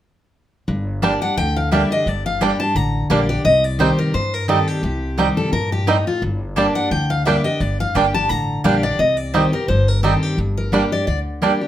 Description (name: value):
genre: bluegrass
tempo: 173 BPM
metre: 4/4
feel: swing 55% on 8ths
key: G minor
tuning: A4 = 440 Hz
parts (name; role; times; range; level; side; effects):
- picked steel-string acoustic guitar; accompaniment; 0.7-11.7 s; G2 to G4; -21 LUFS; left 1 dB; none
- upright bass; bass; 0.7-11.5 s; G1 to G2; -23 LUFS; equal; none
- picked steel-string acoustic guitar; melody; 1.0-11.2 s; Eb4 to Bb5; -21 LUFS; left 2 dB; none
- bluegrass banjo; arpeggios; 1.0-11.5 s; G3 to Eb4; -21 LUFS; right 5 dB; none
- mandolin; stabs; 1.0-11.5 s; Bb3 to G5; -23 LUFS; right 7 dB; none
room: moderate studio reverb, RT60 0.6 s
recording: none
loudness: -16 LUFS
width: side -12 dB against mid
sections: 0.7-11.7 A section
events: none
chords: 0.7 Gm; 3.4 Cm; 6.2 Gm; 9.0 Cm; 10.4 Gm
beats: | 0.68 1.03 1.37 1.72 | 2.06 2.41 2.76 3.10 | 3.45 3.79 4.14 4.49 | 4.83 5.18 5.53 5.87 | 6.22 6.57 6.91 7.26 | 7.61 7.95 8.30 8.65 | 8.99 9.34 9.69 10.04 | 10.38 10.73 11.08 11.42